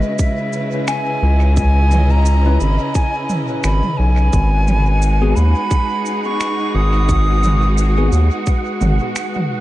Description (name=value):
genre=ambient dub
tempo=87 BPM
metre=4/4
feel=swing 58% on 16ths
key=G# minor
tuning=A4 = 440 Hz
part: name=bright silver concert flute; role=melody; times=0.0-8.1 s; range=D#5 to D#6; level=-22 LUFS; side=equal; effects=vintage 12-bit sampler grit, dub echo
part: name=clear studio string section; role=sustained chords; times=0.0-9.6 s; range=C#3 to D#5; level=-23 LUFS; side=right 1 dB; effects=none
part: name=kalimba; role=arpeggios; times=0.0-4.0, 8.8-9.6 s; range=G#3 to G#5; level=-28 LUFS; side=equal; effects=none
part: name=round analog bass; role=bass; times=0.0-9.0 s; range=G#1 to D#2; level=-13 LUFS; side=equal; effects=none
part: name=electronic kick drum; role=drums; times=0.2-8.6 s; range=none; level=-17 LUFS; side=equal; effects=none
part: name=organic electronic drum kit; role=drums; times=0.2-9.5 s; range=cabasa, finger snaps, toms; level=-26 LUFS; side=right 1 dB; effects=dub echo
part: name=bell-like tine electric piano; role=stabs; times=2.5-8.1 s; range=B3 to B4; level=-27 LUFS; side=left 4 dB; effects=none
part: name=wind-like tuned noise texture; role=texture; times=4.7-9.6 s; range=F#5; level=-29 LUFS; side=right 6 dB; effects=built-in reverb
room=light reverb, digital ambience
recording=echo-heavy mix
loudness=-14 LUFS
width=side -15 dB against mid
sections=0.0-9.6 A section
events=none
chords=0.0 C#m7; 4.3 G#m7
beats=0.19 0.88 | 1.57 2.26 2.95 3.64 | 4.33 5.02 5.71 6.40 | 7.09 7.78 8.47 9.16